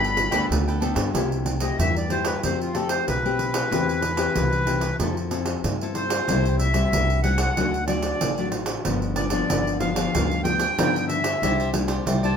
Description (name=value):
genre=samba and choro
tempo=93 BPM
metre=4/4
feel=straight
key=C major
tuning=A4 = 440 Hz
part: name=accordion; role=melody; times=0.0-12.4 s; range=F4 to B5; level=-25 LUFS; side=equal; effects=none
part: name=cavaquinho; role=accompaniment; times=0.0-1.1, 11.4-12.4 s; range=D4 to G5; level=-31 LUFS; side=right 4 dB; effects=none
part: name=nylon-string guitar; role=accompaniment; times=0.0-12.4 s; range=G2 to A4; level=-26 LUFS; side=left 5 dB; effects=none
part: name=upright bass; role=bass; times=0.0-12.4 s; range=G1 to G2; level=-27 LUFS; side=right 1 dB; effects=none
part: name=pandeiro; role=percussion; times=0.0-12.4 s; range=none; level=-27 LUFS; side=right 2 dB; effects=none
room=moderate studio ambience, RT60 0.5 s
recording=minimal, uncompressed stereo recording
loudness=-21 LUFS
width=side -7 dB against mid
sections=0.0-1.1 A section; 1.1-12.4 B section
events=accordion solo 1.1-12.4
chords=0.0 Gadd9; 1.1 C6; 2.4 Fadd9; 3.7 C/E; 5.0 Fmaj7; 6.3 C; 7.6 D; 8.9 G7; 11.4 Cadd9